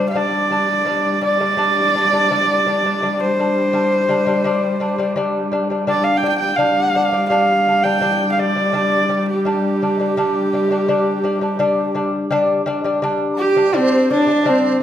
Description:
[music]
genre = mongolian traditional, Mongolian folk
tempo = 84 BPM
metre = 4/4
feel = straight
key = unclear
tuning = A4 = 441 Hz
[part]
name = clear horsehead fiddle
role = melody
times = 0.0-14.8 s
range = C4 to G5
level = -17 LUFS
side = right 1 dB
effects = none
[part]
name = lute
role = arpeggios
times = 0.0-14.8 s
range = G3 to D4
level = -20 LUFS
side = left 2 dB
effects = none
[part]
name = rich horsehead fiddle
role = drone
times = 0.0-12.4 s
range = G3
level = -24 LUFS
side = left 1 dB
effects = none
[part]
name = mellow dizi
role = second line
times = 13.3-14.8 s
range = C5 to Bb5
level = -22 LUFS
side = right 4 dB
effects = none
[sound]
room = wet recital hall reverb, RT60 1.4 s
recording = none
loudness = -15 LUFS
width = side -10 dB against mid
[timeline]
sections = 0.0-12.3 A section; 12.3-14.8 B section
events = none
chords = 0.0 G5

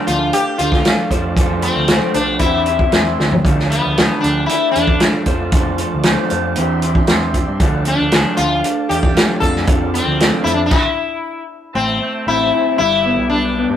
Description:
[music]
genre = psychedelic rock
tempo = 116 BPM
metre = 4/4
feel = straight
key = unclear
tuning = A4 = 440 Hz
[part]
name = sitar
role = melody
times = 0.0-13.7 s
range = B3 to A4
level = -18 LUFS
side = left 4 dB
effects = none
[part]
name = bright tonewheel organ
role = sustained chords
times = 0.0-13.8 s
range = B4 to C6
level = -30 LUFS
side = right 2 dB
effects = slow rotary speaker, chorus vibrato
[part]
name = electric guitar through a small old amp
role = riff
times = 0.0-13.8 s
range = D3 to C5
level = -20 LUFS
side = right 2 dB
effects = phaser
[part]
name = growling picked electric bass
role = bass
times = 0.1-13.8 s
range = G1 to G2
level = -22 LUFS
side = right 1 dB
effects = overdrive
[part]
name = vintage drum kit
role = drums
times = 0.1-10.8 s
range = crash cymbal, hi-hat, kick drum, snare drum, toms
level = -16 LUFS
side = equal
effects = none
[sound]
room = moderate studio reverb, RT60 0.6 s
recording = rough rehearsal-room recording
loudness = -13 LUFS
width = side -10 dB against mid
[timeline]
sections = 0.0-11.8 A section; 11.8-13.8 B section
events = drum fill 3.2; stop 10.7-11.8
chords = 0.0 Dm; 1.1 F6; 2.4 Cadd9/E; 3.4 Dm; 5.3 F6; 6.6 Cadd9/E; 7.6 Dm; 9.4 F6; 10.7 N.C.; 11.8 Am; 12.8 G

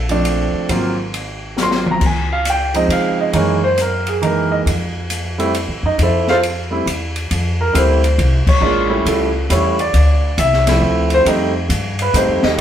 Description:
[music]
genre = jazz piano trio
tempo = 136 BPM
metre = 3/4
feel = swing 65% on 8ths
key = unclear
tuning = A4 = 439 Hz
[part]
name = warm concert grand piano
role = melody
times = 0.0-12.6 s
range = Fb3 to C6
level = -16 LUFS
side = right 1 dB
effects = none
[part]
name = upright bass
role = bass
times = 0.0-12.6 s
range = Ab1 to Db3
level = -18 LUFS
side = equal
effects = none
[part]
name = open jazz drum kit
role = drums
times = 0.1-12.6 s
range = crash cymbal, hi-hat, kick drum, ride cymbal, snare drum, toms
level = -22 LUFS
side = left 2 dB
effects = none
[sound]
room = moderate stone room reverb, RT60 1.1 s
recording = band playing live in one room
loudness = -14 LUFS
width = side -10 dB against mid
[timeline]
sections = 0.0-7.3 A section; 7.3-12.6 B section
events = drum fill 1.6-2.0; band accent 8.4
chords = 0.0 Bbmaj7; 0.7 Ab13; 2.0 Dbmaj7; 3.3 Gb13; 4.7 Fmaj7; 7.3 F5; 8.6 A7; 9.9 Dm9; 11.3 F7

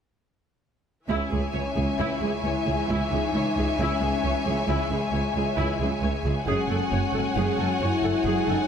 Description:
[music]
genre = cinematic, epic orchestral film score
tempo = 89 BPM (dotted quarters)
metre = 12/8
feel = straight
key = C# minor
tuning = A4 = 439 Hz
[part]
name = warm symphonic violin section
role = melody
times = 1.1-8.7 s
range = G#5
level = -33 LUFS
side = left 4 dB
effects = none
[part]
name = warm symphonic violin section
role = second line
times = 1.1-8.7 s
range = E5 to F#5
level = -32 LUFS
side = left 5 dB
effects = none
[part]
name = clear symphonic viola section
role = accompaniment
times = 1.1-8.6 s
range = E4 to C#5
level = -32 LUFS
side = right 1 dB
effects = none
[part]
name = mellow French horn section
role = sustained chords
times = 1.1-8.7 s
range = G#3 to E4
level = -30 LUFS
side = left 4 dB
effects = none
[part]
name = rich symphonic string section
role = sustained chords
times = 1.1-8.7 s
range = E3 to G#5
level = -33 LUFS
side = equal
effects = none
[part]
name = rich symphonic cello section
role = bass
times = 1.1-8.6 s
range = C#2 to F#2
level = -29 LUFS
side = right 2 dB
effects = none
[part]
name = rich symphonic double bass section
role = bass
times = 1.1-8.6 s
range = F#1 to C#2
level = -29 LUFS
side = right 3 dB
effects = none
[sound]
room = moderate scoring stage reverb, RT60 2.0 s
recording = none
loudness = -23 LUFS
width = side -7 dB against mid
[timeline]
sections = 1.1-8.7 A section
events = none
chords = 1.1 C#m; 6.5 F#madd9

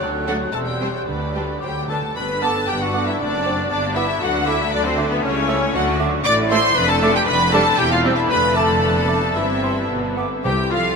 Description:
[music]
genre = quick classical-period movement for symphony orchestra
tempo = 109-119 BPM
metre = 2/4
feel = rubato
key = G major, C major from 6.3 s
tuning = A4 = 440 Hz
[part]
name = rich studio violin section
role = melody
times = 0.0-11.0 s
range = B4 to D6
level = -24 LUFS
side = equal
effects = none
[part]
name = hollow concert flute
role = second line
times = 0.0-11.0 s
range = A4 to F#6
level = -30 LUFS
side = right 4 dB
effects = none
[part]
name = mellow clarinet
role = second line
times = 0.0-10.8 s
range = B3 to D5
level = -28 LUFS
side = left 2 dB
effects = none
[part]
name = mellow cor anglais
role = second line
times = 0.0-11.0 s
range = B3 to D5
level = -27 LUFS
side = left 4 dB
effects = none
[part]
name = mellow bassoon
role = accompaniment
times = 0.0-10.3 s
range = F#3 to C4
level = -30 LUFS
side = right 5 dB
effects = none
[part]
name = mellow French horn section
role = sustained chords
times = 0.0-11.0 s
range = D3 to E4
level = -26 LUFS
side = equal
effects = none
[part]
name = dark studio double bass section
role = bass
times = 0.0-10.9 s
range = E1 to D2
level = -28 LUFS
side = equal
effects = none
[part]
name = rich studio cello section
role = bass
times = 0.0-11.0 s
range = D2 to G3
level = -28 LUFS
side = equal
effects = none
[part]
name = warm studio violin section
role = second line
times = 0.3-10.8 s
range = F4 to D6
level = -26 LUFS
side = right 1 dB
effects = none
[part]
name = clear studio viola section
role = accompaniment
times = 0.3-10.2 s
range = D3 to G4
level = -28 LUFS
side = right 1 dB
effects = none
[part]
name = timpani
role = percussion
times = 1.1-2.1, 10.5-11.0 s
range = C3 to D3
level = -31 LUFS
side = right 2 dB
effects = none
[part]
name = warm trumpet section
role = stabs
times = 1.6-11.0 s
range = B3 to D5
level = -24 LUFS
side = left 2 dB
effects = none
[sound]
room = wet huge ambient reverb, RT60 8.5 s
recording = in a vast, echoing space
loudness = -16 LUFS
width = side -5 dB against mid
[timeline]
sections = 0.0-2.2 A section; 2.2-10.4 B section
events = timpani fill 1.6-2.2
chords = 0.0 D; 0.5 C/E; 1.1 G/D; 1.6 D; 2.2 G; 3.2 D7/F#; 3.7 G; 4.2 D; 5.2 A7/C#; 5.8 D; 6.3 Am; 6.8 Dm/F; 7.8 C/E; 8.3 Dm/F; 9.4 C/G; 9.9 G; 10.4 C

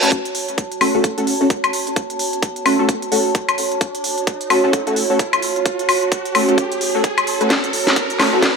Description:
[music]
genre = bass house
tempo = 130 BPM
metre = 4/4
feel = swing 59% on 16ths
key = F# minor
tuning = A4 = 440 Hz
[part]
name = band-passed chord stab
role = stabs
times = 0.0-8.5 s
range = A3 to B4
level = -20 LUFS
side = left 1 dB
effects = ensemble chorus, sidechain pumping, ping-pong delay
[part]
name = reverse cymbal and riser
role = sound effects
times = 0.0-8.6 s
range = none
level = -26 LUFS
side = right 2 dB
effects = none
[part]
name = warbly tape-like pad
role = texture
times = 0.0-8.6 s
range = F#4 to A5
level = -22 LUFS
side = right 4 dB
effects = chorus, built-in reverb, sidechain pumping
[part]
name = electronic kick drum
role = drums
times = 0.1-8.5 s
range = none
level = -20 LUFS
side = equal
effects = high-pass filter on kick, high-pass filter on room
[part]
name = garage drum kit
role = drums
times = 0.1-8.5 s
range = hi-hat, snare drum, woodblock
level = -20 LUFS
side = left 2 dB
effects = none
[sound]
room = moderate lush hall reverb, RT60 1.6 s, digital ambience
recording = high-pass filter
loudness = -15 LUFS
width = side -5 dB against mid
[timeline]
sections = 0.1-8.6 A section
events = build-up 0.1-8.6; riser 0.1-8.6; filter sweep on synth stab 0.1-8.6; drum fill 7.5-8.6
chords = 0.1 F#m

